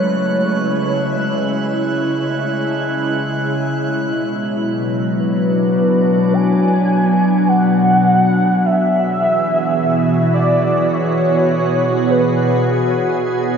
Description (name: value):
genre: ambient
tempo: free time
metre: none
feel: none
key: B dorian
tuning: A4 = 440 Hz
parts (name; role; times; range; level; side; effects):
- warm velvety synth lead; melody; 0.0-13.0 s; B4 to G#5; -19 LUFS; equal; chorus, shimmer reverb, tape echo
- soft additive organ-like pad; sustained chords; 0.0-13.6 s; B2 to B4; -16 LUFS; equal; ensemble chorus, built-in reverb, shimmer reverb
- soft synth bell; arpeggios; 0.0-4.0 s; G#3 to A3; -28 LUFS; equal; none
- drifting glass-harmonics texture; texture; 0.0-4.0 s; F#6; -28 LUFS; right 2 dB; chorus, built-in reverb, shimmer reverb
room: wet cathedral reverb, RT60 6.2 s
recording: in a vast, echoing space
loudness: -14 LUFS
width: side -6 dB against mid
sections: 0.0-4.0 A section; 4.0-13.6 B section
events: none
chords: 0.0 C#m7; 4.0 Bm; 8.6 E6/B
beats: free time